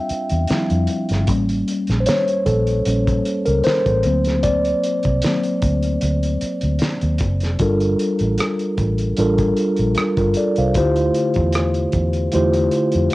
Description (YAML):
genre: R&B, neo-soul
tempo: 76 BPM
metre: 4/4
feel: swing 53% on 16ths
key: D minor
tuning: A4 = 438 Hz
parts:
  - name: mellow tine electric piano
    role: accompaniment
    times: 0.0-13.1 s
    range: D3 to G5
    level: -18 LUFS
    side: equal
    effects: slow stereo tremolo, cassette tape, plate reverb
  - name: vintage muted fingered electric bass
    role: bass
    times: 0.1-13.1 s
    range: E#1 to F2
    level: -20 LUFS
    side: equal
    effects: none
  - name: cloth-damped thuddy drum kit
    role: drums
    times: 0.1-13.1 s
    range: hi-hat, kick drum, rim click, snare drum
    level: -24 LUFS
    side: equal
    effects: cassette tape
room: light reverb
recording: home recording on cassette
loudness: -16 LUFS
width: side -18 dB against mid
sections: 0.0-7.6 A section; 7.6-13.1 B section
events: tine electric piano solo 0.0-7.6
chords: 0.0 Dm11; 1.3 A7b9; 4.0 D7b13; 7.6 Gm9; 10.8 Dm11